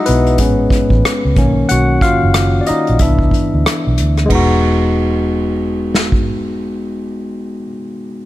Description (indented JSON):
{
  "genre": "R&B, neo-soul",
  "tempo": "92 BPM",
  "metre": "4/4",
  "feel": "swing 58% on 16ths",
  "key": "E major",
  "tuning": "A4 = 440 Hz",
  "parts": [
    { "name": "barky tine electric piano", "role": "accompaniment", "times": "0.0-8.3 s", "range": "D#3 to F#5", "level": "-16 LUFS", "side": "left 1 dB", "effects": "none" },
    { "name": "vintage muted fingered electric bass", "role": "bass", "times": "0.1-7.6 s", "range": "E1 to D2", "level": "-16 LUFS", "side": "right 1 dB", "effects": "none" },
    { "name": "unplugged drum kit", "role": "drums", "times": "0.1-6.2 s", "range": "hi-hat, kick drum, ride cymbal, rim click, snare drum", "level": "-17 LUFS", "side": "right 1 dB", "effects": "none" }
  ],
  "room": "light reverb, small room reverb",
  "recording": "none",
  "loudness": "-12 LUFS",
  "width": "side -15 dB against mid",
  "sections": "0.0-4.3 A section; 4.3-6.9 B section",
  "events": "tine electric piano solo 0.0-4.3",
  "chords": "0.4 Amaj9; 1.4 Bmaj9; 3.0 Cmaj9; 4.3 Emaj9",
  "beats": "0.39 1.04 | 1.69 2.34 3.00 3.65 | 4.30 4.95 5.61 6.26"
}